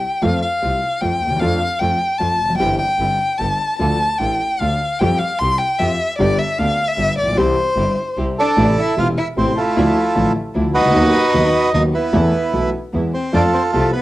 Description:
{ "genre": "tango", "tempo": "151 BPM", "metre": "3/4", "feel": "rubato", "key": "C major, A minor from 8.6 s", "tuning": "A4 = 440 Hz", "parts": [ { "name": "warm violin", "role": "second line", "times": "0.0-14.0 s", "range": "A3 to C6", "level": "-20 LUFS", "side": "left 1 dB", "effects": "cassette tape, plate reverb" }, { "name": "warm grand piano", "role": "accompaniment", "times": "0.2-13.9 s", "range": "E1 to A4", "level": "-21 LUFS", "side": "left 1 dB", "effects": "cassette tape" }, { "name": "warm chamber string section", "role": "stabs", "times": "0.2-13.9 s", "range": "F3 to A4", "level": "-29 LUFS", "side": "right 1 dB", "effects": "cassette tape" }, { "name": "clear double bass", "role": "bass", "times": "0.2-13.9 s", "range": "E1 to F2", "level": "-22 LUFS", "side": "right 1 dB", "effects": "none" }, { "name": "bandoneon", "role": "melody", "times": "8.4-14.0 s", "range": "E4 to F5", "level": "-17 LUFS", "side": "right 2 dB", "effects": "cassette tape, plate reverb" } ], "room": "moderate studio reverb, RT60 0.5 s", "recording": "home recording on cassette", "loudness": "-15 LUFS", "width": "side -16 dB against mid", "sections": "0.0-8.6 A section; 8.6-14.0 B section", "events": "violin solo 0.0-8.6", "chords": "0.2 F; 1.4 Dm/F; 2.6 C/G; 3.4 Gadd9; 3.8 Dm; 5.0 Fsus2; 6.2 G; 7.4 C; 8.6 Am; 9.8 Dmadd9; 10.9 B/D#; 12.1 Esus4; 12.9 E; 13.3 F" }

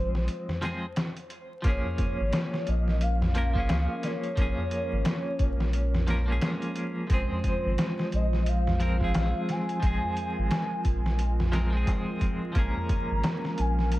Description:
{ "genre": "trip hop", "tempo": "88 BPM", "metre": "4/4", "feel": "swing 60% on 16ths", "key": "Bb minor", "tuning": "A4 = 440 Hz", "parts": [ { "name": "pure breathy sine lead", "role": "melody", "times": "0.0-14.0 s", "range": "C5 to Bb5", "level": "-35 LUFS", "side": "equal", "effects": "ensemble chorus, tape echo" }, { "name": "clean electric guitar", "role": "accompaniment", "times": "0.0-14.0 s", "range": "F3 to Bb4", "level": "-33 LUFS", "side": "equal", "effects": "tremolo, vintage 12-bit sampler grit" }, { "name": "soft dub sub bass", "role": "bass", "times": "0.0-14.0 s", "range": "Ab1 to Db2", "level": "-26 LUFS", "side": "equal", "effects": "none" }, { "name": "trip hop sampler-style drum kit", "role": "drums", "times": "0.1-14.0 s", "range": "hi-hat, kick drum, snare drum", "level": "-30 LUFS", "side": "equal", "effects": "studio ambience" }, { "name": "darbuka", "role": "percussion", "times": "0.5-13.4 s", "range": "none", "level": "-36 LUFS", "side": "equal", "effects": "none" }, { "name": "warbly tape-like pad", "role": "sustained chords", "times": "2.6-14.0 s", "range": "Ab3 to C5", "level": "-38 LUFS", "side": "equal", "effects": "chorus, built-in reverb" } ], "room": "little or no reverb", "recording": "vinyl crackle", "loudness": "-25 LUFS", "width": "side -17 dB against mid", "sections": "0.0-1.6 A section; 1.6-14.0 B section", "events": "break 0.3-1.6", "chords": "0.0 Fm; 1.6 Bbm7; 7.1 Fm; 12.6 Bbm7" }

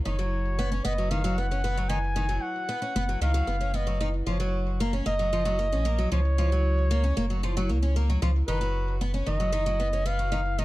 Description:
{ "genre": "folktronica", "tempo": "114 BPM", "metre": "4/4", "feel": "straight", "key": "unclear", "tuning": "A4 = 440 Hz", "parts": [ { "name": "breathy flugelhorn", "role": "melody", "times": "0.1-10.6 s", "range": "B4 to G#5", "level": "-31 LUFS", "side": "equal", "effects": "ping-pong delay" }, { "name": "picked twelve-string acoustic guitar", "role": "arpeggios", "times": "0.1-10.6 s", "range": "D#3 to C#4", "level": "-30 LUFS", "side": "equal", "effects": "ping-pong delay" }, { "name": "warm sub bass", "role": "bass", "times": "0.1-10.6 s", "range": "F#1 to C#2", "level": "-26 LUFS", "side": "equal", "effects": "none" } ], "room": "light reverb", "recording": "dark, warm production", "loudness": "-24 LUFS", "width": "side -18 dB against mid", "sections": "0.0-10.6 A section", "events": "none", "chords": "0.1 Badd9/F#; 4.3 F#maj7; 8.5 B/F#" }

